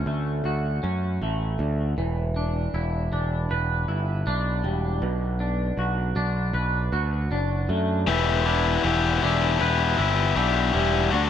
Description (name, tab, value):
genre	post-rock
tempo	79 BPM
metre	4/4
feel	straight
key	E dorian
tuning	A4 = 438 Hz
part	twangy electric guitar	arpeggios	0.0-11.3 s	B2 to B4	-28 LUFS	equal	wide subtle chorus, analog delay
part	growling picked electric bass	bass	0.0-11.3 s	E1 to F#2	-25 LUFS	right 1 dB	overdrive
part	biting overdriven guitar	riff	8.1-11.3 s	D3 to G4	-22 LUFS	left 7 dB	none
room	light reverb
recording	none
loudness	-22 LUFS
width	side -9 dB against mid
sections	0.0-8.1 A section; 8.1-11.3 B section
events	none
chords	0.0 Dmaj7; 2.0 Em7; 5.0 Bm7; 8.1 Em7